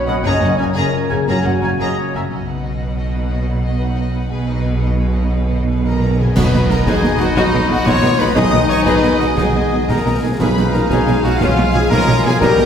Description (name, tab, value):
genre	cinematic, heroic adventure film score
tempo	119 BPM (dotted quarters)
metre	6/8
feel	straight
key	B lydian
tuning	A4 = 440 Hz
part	mellow French horn section	sustained chords	0.0-2.2, 5.8-12.7 s	D#4 to D#5	-21 LUFS	left 3 dB	none
part	mellow trombone section	sustained chords	0.0-2.1, 6.4-12.7 s	A#2 to C#4	-25 LUFS	right 2 dB	none
part	concert harp	arpeggios	0.0-12.7 s	F#2 to G#4	-28 LUFS	left 6 dB	none
part	bright trumpet	stabs	0.0-2.1, 5.8-12.7 s	D#4 to G#5	-24 LUFS	equal	none
part	clear symphonic violin section	melody	0.1-12.7 s	B4 to A#5	-28 LUFS	left 4 dB	none
part	clear symphonic violin section	second line	0.1-12.7 s	C#4 to D#6	-28 LUFS	left 3 dB	none
part	hollow small flute group	second line	0.1-2.2, 6.4-12.7 s	G5 to B5	-29 LUFS	left 1 dB	none
part	mellow clarinet	second line	0.1-2.2, 6.4-12.7 s	G3 to F#4	-25 LUFS	left 4 dB	none
part	warm cor anglais	second line	0.1-2.2, 6.4-12.7 s	C#5 to G#5	-29 LUFS	right 1 dB	none
part	warm symphonic viola section	accompaniment	0.1-12.7 s	A#3 to G#4	-26 LUFS	equal	none
part	rich symphonic cello section	bass	0.1-12.6 s	F#2 to B2	-22 LUFS	right 2 dB	none
part	rich symphonic double bass section	bass	0.1-12.6 s	F#1 to B1	-20 LUFS	right 1 dB	none
part	timpani	percussion	2.3-10.9 s	B2	-23 LUFS	right 1 dB	none
part	cymbal swell, clash cymbals and concert bass drum	percussion	4.3-7.0 s	none	-25 LUFS	equal	none
part	mellow tuba	bass	6.4-12.7 s	B1	-22 LUFS	right 1 dB	none
part	concert snare drum, clash cymbals and concert bass drum	drums	6.4-12.7 s	none	-23 LUFS	equal	none
room	wet scoring stage reverb, RT60 1.6 s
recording	heard from further back in the room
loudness	-13 LUFS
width	side -8 dB against mid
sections	0.0-2.3 A section; 2.3-6.4 B section; 6.4-12.7 C section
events	timpani fill 4.3-6.4; band accent 6.4-6.7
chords	0.2 F#add9; 2.3 B; 4.3 G#m/B; 6.4 B; 10.4 C#/B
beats	| 0.24 0.75 | 1.27 1.79 | 2.31 2.82 | 3.32 3.82 | 4.32 4.82 | 5.33 5.85 | 6.37 6.87 | 7.37 7.86 | 8.36 8.86 | 9.37 9.88 | 10.40 10.90 | 11.40 11.90 | 12.41